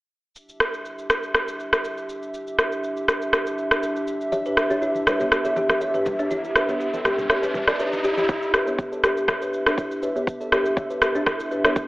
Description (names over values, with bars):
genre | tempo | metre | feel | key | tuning
afro house | 121 BPM | 4/4 | swing 53% on 16ths | E minor | A4 = 439 Hz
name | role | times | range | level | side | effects
dark analog pad | sustained chords | 0.4-11.9 s | D4 to E5 | -28 LUFS | right 1 dB | chorus, sidechain pumping
electronic shaker and rim click | drums | 0.4-11.9 s | none | -22 LUFS | equal | none
kalimba | arpeggios | 4.3-11.7 s | B3 to E5 | -24 LUFS | left 1 dB | sidechain pumping, low-pass filter, dub echo
congas | percussion | 4.3-8.3 s | none | -38 LUFS | left 1 dB | none
riser | sound effects | 5.9-8.3 s | none | -31 LUFS | equal | none
electronic kick drum | drums | 8.3-11.9 s | none | -26 LUFS | equal | none
room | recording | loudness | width
moderate plate reverb, RT60 2.0 s | telephone sound | -20 LUFS | side -18 dB against mid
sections
0.4-8.3 A section; 8.3-11.9 B section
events
riser 5.9-8.3; build-up 8.3-11.9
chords
0.4 Em7